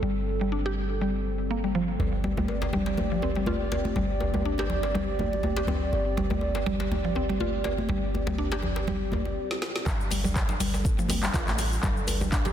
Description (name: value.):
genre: afro house.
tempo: 122 BPM.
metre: 4/4.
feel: swing 55% on 16ths.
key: unclear.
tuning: A4 = 438 Hz.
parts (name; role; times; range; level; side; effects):
dark analog pad; sustained chords; 0.0-12.5 s; G3 to D5; -32 LUFS; right 1 dB; chorus, sidechain pumping.
mallet-like synth pluck; arpeggios; 0.0-12.5 s; F3 to G4; -31 LUFS; left 1 dB; chorus, sidechain pumping, tape echo.
warm 808-style bass; bass; 0.0-12.5 s; G1 to A1; -31 LUFS; equal; tube saturation, sidechain pumping.
djembe; percussion; 2.0-12.5 s; none; -33 LUFS; left 1 dB; none.
congas; percussion; 2.2-12.5 s; none; -34 LUFS; right 1 dB; none.
deep house drum kit; drums; 9.5-12.5 s; handclaps, hi-hat, shaker, snare drum; -30 LUFS; equal; none.
electronic kick drum; drums; 9.9-12.4 s; none; -27 LUFS; equal; none.
room: moderate lush hall reverb, RT60 2.1 s.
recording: dense, heavily limited modern master.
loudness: -25 LUFS.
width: side -10 dB against mid.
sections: 0.0-9.9 A section; 9.9-12.5 B section.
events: filter sweep on synth pluck 0.0-9.9; drum fill 9.5-9.9; drop 9.9-12.5.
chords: 0.0 N.C.; 2.0 C5/G; 9.9 G5.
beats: | 0.03 0.52 1.01 1.50 | 1.99 2.49 2.98 3.47 | 3.96 4.45 4.95 5.44 | 5.93 6.42 6.91 7.40 | 7.90 8.39 8.88 9.37 | 9.86 10.36 10.85 11.34 | 11.83 12.32.